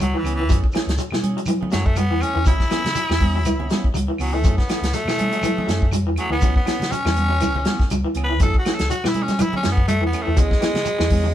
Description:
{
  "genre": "afrobeat",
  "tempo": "122 BPM",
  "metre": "4/4",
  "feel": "swing 56% on 16ths",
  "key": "F# minor",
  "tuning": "A4 = 439 Hz",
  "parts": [
    { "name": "growling tenor saxophone", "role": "melody", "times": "0.0-11.3 s", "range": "E3 to B4", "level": "-24 LUFS", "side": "left 1 dB", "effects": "none" },
    { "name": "electric guitar through a small old amp", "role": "arpeggios", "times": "0.0-11.3 s", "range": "E3 to F#3", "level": "-27 LUFS", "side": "left 1 dB", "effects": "none" },
    { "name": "fingered electric bass", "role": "bass", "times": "0.0-11.3 s", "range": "C#2 to F#3", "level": "-24 LUFS", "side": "equal", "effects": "none" },
    { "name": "warm soul drum kit", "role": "drums", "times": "0.0-11.2 s", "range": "hi-hat, kick drum, snare drum", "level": "-21 LUFS", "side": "equal", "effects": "none" },
    { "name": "claves", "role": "percussion", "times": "0.0-11.1 s", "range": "none", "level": "-39 LUFS", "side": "equal", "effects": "none" },
    { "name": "congas", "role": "percussion", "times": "0.0-11.3 s", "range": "none", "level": "-26 LUFS", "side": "right 2 dB", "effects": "none" },
    { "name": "semi-hollow electric guitar", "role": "stabs", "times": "0.2-11.3 s", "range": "E3 to G#4", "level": "-31 LUFS", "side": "right 5 dB", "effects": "spring reverb" },
    { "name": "shekere", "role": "percussion", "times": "0.2-11.2 s", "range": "none", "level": "-32 LUFS", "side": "right 4 dB", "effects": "none" }
  ],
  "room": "moderate studio reverb, RT60 0.6 s",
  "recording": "band playing live in one room",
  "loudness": "-18 LUFS",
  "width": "side -11 dB against mid",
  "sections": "0.0-11.3 A section",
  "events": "tenor saxophone solo 0.0-11.3",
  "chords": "0.5 F#m9; 2.5 C#m7; 4.5 F#m9; 6.4 C#m7; 8.4 F#m9; 10.4 C#m7"
}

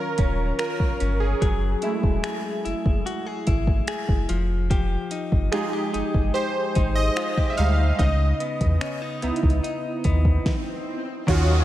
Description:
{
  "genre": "contemporary R&B",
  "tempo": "73 BPM",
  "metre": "4/4",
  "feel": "straight",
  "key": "unclear",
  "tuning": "A4 = 443 Hz",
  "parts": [
    { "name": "warm analog keys", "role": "accompaniment", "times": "0.0-11.6 s", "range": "Eb3 to F5", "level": "-26 LUFS", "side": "right 2 dB", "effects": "chorus" },
    { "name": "direct-recorded clean electric guitar", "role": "arpeggios", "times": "0.0-11.6 s", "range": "Db3 to Ab4", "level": "-30 LUFS", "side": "left 4 dB", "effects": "tape echo" },
    { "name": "warm sub bass", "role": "bass", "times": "0.2-11.6 s", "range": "Eb1 to Fb2", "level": "-22 LUFS", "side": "equal", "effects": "none" },
    { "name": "smooth R&B drum kit", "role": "drums", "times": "0.2-11.5 s", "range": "finger snaps, hi-hat, kick drum, snare drum", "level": "-24 LUFS", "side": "equal", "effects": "vintage 12-bit sampler grit" },
    { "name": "swell and downlifter", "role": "sound effects", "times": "10.3-11.6 s", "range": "none", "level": "-35 LUFS", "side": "left 2 dB", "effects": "none" },
    { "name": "warm analog pad", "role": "sustained chords", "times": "11.3-11.6 s", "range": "Db5 to Eb6", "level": "-29 LUFS", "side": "equal", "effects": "chorus" }
  ],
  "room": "light reverb",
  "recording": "none",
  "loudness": "-21 LUFS",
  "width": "side -14 dB against mid",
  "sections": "0.0-11.3 A section",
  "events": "synth keys solo 0.0-11.3; swell 10.3-11.3; stop 10.5-11.3",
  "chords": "0.0 Ebm9; 1.4 Gbm9; 4.3 Fm9; 8.0 Dbm9"
}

